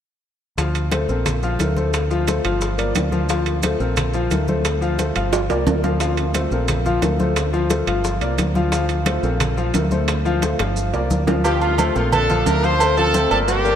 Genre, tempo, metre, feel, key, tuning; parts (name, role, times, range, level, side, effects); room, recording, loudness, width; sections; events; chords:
latin, salsa; 177 BPM; 4/4; straight; A4 = 441 Hz
clear grand piano; accompaniment; 0.6-13.8 s; F3 to F5; -22 LUFS; left 3 dB
deep dub fingered electric bass; bass; 0.6-13.8 s; G1 to D2; -22 LUFS; right 1 dB
bongos and cowbell; percussion; 0.6-13.7 s; -30 LUFS; left 4 dB
congas; percussion; 0.6-13.8 s; -27 LUFS; left 2 dB
maracas; percussion; 0.6-13.8 s; -36 LUFS; right 6 dB
timbales and agogo bells; percussion; 0.6-13.5 s; -26 LUFS; right 7 dB
bright horn section; melody; 11.4-13.8 s; A3 to C5; -19 LUFS; right 1 dB
wet cathedral reverb, RT60 6.4 s; in a vast, echoing space; -17 LUFS; side -9 dB against mid
0.6-11.4 A section; 11.4-13.8 B section
drum fill 5.3-6.0, 10.4-11.4
0.6 Bbmaj7; 1.9 Dm7; 2.6 Gm7; 3.3 Bbmaj7; 4.7 Dm7; 5.3 Gm7; 6.0 Bbmaj7; 7.4 Dm7; 8.0 Gm7; 8.7 Bbmaj7; 10.1 Dm7; 10.8 Gm7; 11.4 Bbmaj7; 12.8 Dm7